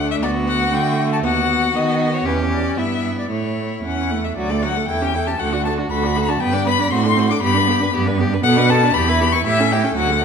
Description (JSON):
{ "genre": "quick classical-period movement for string quartet", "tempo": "118 BPM", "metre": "2/4", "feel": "straight", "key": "D major", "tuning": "A4 = 439 Hz", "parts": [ { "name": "rich violin", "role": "melody", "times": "0.0-10.2 s", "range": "B4 to D6", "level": "-21 LUFS", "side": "left 7 dB", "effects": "none" }, { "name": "rich violin", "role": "second line", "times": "0.0-10.2 s", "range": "D4 to D5", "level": "-25 LUFS", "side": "left 3 dB", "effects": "none" }, { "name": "rich viola", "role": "accompaniment", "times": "0.0-10.2 s", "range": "F#3 to F#4", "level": "-22 LUFS", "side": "right 1 dB", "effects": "none" }, { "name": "clear cello", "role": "bass", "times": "0.0-10.2 s", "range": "D2 to D#3", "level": "-21 LUFS", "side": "right 5 dB", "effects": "none" } ], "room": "moderate scoring stage reverb, RT60 1.6 s", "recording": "none", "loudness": "-16 LUFS", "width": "side -6 dB against mid", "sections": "0.0-4.4 A section; 4.4-10.2 B section", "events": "none", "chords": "0.0 D; 1.2 B/D#; 2.3 Em7; 2.8 Em/G; 3.3 A; 4.4 D; 4.9 A7/E; 5.4 D; 6.4 G; 6.9 D7/A; 7.4 G; 8.4 Bm7; 9.0 Em; 9.5 A7", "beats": "| 0.22 0.72 | 1.23 1.74 | 2.25 2.77 | 3.31 3.84 | 4.37 4.88 | 5.39 5.91 | 6.41 6.92 | 7.43 7.93 | 8.44 8.95 | 9.46 9.96" }